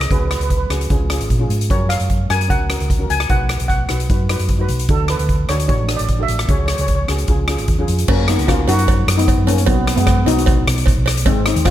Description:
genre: calypso.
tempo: 151 BPM.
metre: 4/4.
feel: straight.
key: F# major.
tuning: A4 = 444 Hz.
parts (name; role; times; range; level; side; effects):
steel pan; melody; 0.0-11.7 s; F#3 to G#5; -20 LUFS; left 1 dB; none.
hollow-body short-scale fingered electric bass; bass; 0.0-11.7 s; G#1 to A#2; -19 LUFS; equal; none.
street-band drum kit; drums; 0.0-11.7 s; crash cymbal, hi-hat, kick drum, rim click; -18 LUFS; equal; none.
steel pan; accompaniment; 0.1-11.7 s; G#3 to B4; -26 LUFS; left 1 dB; none.
cowbell; percussion; 8.1-11.7 s; none; -26 LUFS; right 10 dB; none.
room: light reverb.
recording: none.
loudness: -14 LUFS.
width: side -12 dB against mid.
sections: 0.0-8.1 A section; 8.1-11.7 B section.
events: none.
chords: 0.1 C#sus4; 0.9 C#; 1.7 F#maj7; 3.3 B; 4.9 D; 6.5 C#sus4; 7.3 C#; 8.1 F#; 9.7 B.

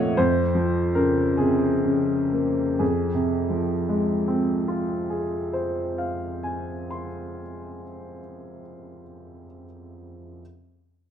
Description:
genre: classical, romantic character piece for solo piano.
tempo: 38-56 BPM (dotted quarters).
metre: 6/8.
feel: rubato.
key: F minor.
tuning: A4 = 440 Hz.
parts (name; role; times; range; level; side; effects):
clear upright piano; solo; 0.0-10.4 s; F2 to C6; -23 LUFS; equal; none.
room: moderate large studio reverb, RT60 1.3 s.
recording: minimal, uncompressed stereo recording.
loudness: -22 LUFS.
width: side -8 dB against mid.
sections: 0.0-2.8 A section; 2.8-8.2 B section.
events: slowing down 0.0-2.8.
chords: 0.2 Bbm/F; 2.8 Fm.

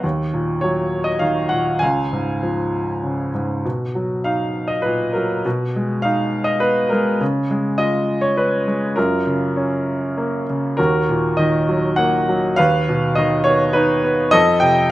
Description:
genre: classical, lyrical solo piano.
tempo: 101 BPM.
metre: 3/4.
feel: rubato.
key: F# major, Eb minor from 10.8 s.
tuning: A4 = 440 Hz.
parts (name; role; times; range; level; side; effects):
bright baby grand piano; solo; 0.0-14.9 s; C#2 to G#5; -16 LUFS; equal; none.
room: light reverb.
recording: close, detailed microphones.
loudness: -16 LUFS.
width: side -16 dB against mid.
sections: 0.0-10.8 A section; 10.8-14.9 B section.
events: none.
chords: 0.0 D#m; 1.8 C#; 3.6 Bmaj7; 5.5 G#m/B; 7.2 C#; 9.0 F#maj7; 10.8 Ebm; 12.6 Db9/Eb; 14.3 F7.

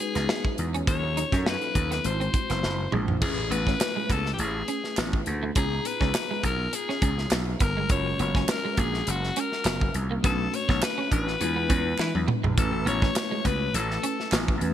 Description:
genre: polished 1980s jazz-funk pop.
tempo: 103 BPM.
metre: 4/4.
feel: swing 54% on 16ths.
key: unclear.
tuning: A4 = 439 Hz.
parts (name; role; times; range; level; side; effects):
raspy alto saxophone; melody; 0.0-14.3 s; F#4 to C#5; -30 LUFS; left 4 dB; none.
mellow tine electric piano; accompaniment; 0.0-14.7 s; F#3 to A#5; -34 LUFS; left 2 dB; fast stereo tremolo, lush chorus.
electric guitar at the edge of break-up; riff; 0.0-14.5 s; G#3 to D#4; -34 LUFS; right 4 dB; ensemble chorus.
gritty slap bass; bass; 0.2-14.7 s; F#1 to E3; -28 LUFS; right 1 dB; overdrive.
modern studio drum kit; drums; 0.2-14.7 s; crash cymbal, hi-hat, kick drum, snare drum, toms; -28 LUFS; equal; gated reverb.
group handclap; percussion; 3.8-14.5 s; none; -38 LUFS; right 9 dB; none.
room: light reverb.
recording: bright 1980s-style digital production.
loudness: -23 LUFS.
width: side -11 dB against mid.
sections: 0.0-3.2 A section; 3.2-14.7 B section.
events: drum fill 2.6-3.2, 12.0-12.6.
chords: 0.0 G#m7; 0.9 D#m7b5; 2.0 G#7b13; 3.2 Amaj7; 5.6 C#13; 7.9 F#maj7; 10.2 Bm9; 11.4 E7b9; 12.6 A6.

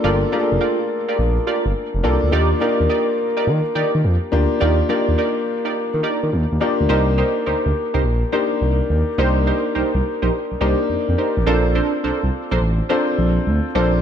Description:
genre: R&B.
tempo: 105 BPM.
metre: 4/4.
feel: swing 66% on 16ths.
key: unclear.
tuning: A4 = 440 Hz.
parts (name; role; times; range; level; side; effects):
clear concert grand piano; accompaniment; 0.0-14.0 s; A3 to Bb4; -21 LUFS; left 3 dB; none.
funky polysynth comp; stabs; 0.0-13.9 s; D4 to D5; -23 LUFS; right 3 dB; chorus, digital delay.
smooth gliding synth bass; bass; 0.0-14.0 s; F1 to Eb3; -19 LUFS; equal; none.
room: moderate echo chamber reverb, RT60 1.7 s, small room reverb.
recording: dark, warm production.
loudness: -16 LUFS.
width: side -8 dB against mid.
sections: 0.0-6.9 A section; 6.9-14.0 B section.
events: none.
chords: 0.0 Gm7; 2.3 Ebmaj7; 6.9 Cm7; 11.5 Bbmaj9.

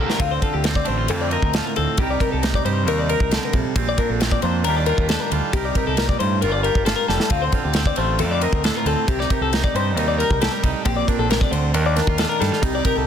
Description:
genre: math rock and midwest emo.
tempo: 135 BPM.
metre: 4/4.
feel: straight.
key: unclear.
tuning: A4 = 440 Hz.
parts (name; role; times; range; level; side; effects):
twangy electric guitar; accompaniment; 0.0-13.1 s; G2 to Eb5; -24 LUFS; right 10 dB; spring reverb, plate reverb.
twelve-string electric guitar; arpeggios; 0.0-13.1 s; F4 to D5; -23 LUFS; left 9 dB; plate reverb.
growling fingered electric bass; bass; 0.0-13.1 s; F1 to G2; -23 LUFS; equal; overdrive.
modern studio drum kit; drums; 0.1-13.0 s; kick drum, ride cymbal, snare drum; -23 LUFS; equal; soft clipping on kick.
room: light reverb.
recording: dense, heavily limited modern master.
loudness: -18 LUFS.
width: side -8 dB against mid.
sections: 0.2-13.1 A section.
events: drum fill 0.0, 7.1.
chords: 0.2 Dm7; 2.0 Cm9; 3.8 Bb69; 4.7 Ebmaj9; 5.5 Cm9; 6.4 Gm9; 7.3 Dm7; 9.1 Cm9; 10.9 Bb69; 11.7 Ebmaj9.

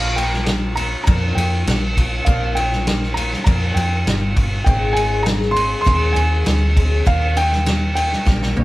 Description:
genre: folk rock and heartland rock.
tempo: 100 BPM.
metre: 4/4.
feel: straight.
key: unclear.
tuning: A4 = 442 Hz.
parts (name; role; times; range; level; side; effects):
dark concert grand piano; melody; 0.0-8.6 s; F5 to C6; -23 LUFS; right 1 dB; none.
picked twelve-string acoustic guitar; accompaniment; 0.0-8.6 s; Ab2 to Ab4; -27 LUFS; left 4 dB; none.
hollow-body short-scale fingered electric bass; bass; 0.0-8.6 s; G1 to F2; -20 LUFS; equal; none.
vintage drum kit; drums; 0.2-8.6 s; kick drum, ride cymbal, snare drum, toms; -18 LUFS; equal; none.
room: moderate small room reverb, RT60 0.5 s.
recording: band playing live in one room.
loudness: -15 LUFS.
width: side -18 dB against mid.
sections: 0.0-8.6 A section.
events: drum fill 8.3-8.6.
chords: 0.0 Bb6; 4.7 Ab; 7.1 Eb.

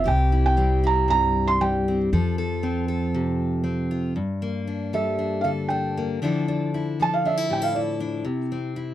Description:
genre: acoustic folk duo or small band.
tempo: 117 BPM.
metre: 4/4.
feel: straight.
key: G dorian.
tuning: A4 = 435 Hz.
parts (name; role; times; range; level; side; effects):
felt-muted upright piano; melody; 0.0-8.0 s; D5 to C6; -23 LUFS; right 3 dB; none.
fingerpicked steel-string acoustic guitar; accompaniment; 0.0-8.9 s; G2 to A4; -25 LUFS; left 2 dB; none.
upright bass; bass; 0.0-4.1 s; C2 to F2; -24 LUFS; right 1 dB; none.
room: light reverb.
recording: dry, close 1970s-style studio recording.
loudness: -21 LUFS.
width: side -12 dB against mid.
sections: 0.0-4.2 A section; 4.2-8.9 B section.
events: felt piano solo 4.2-8.9.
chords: 0.1 C; 2.1 F; 4.2 Gmadd9; 6.2 Dmadd9; 8.3 Am/C (rootless).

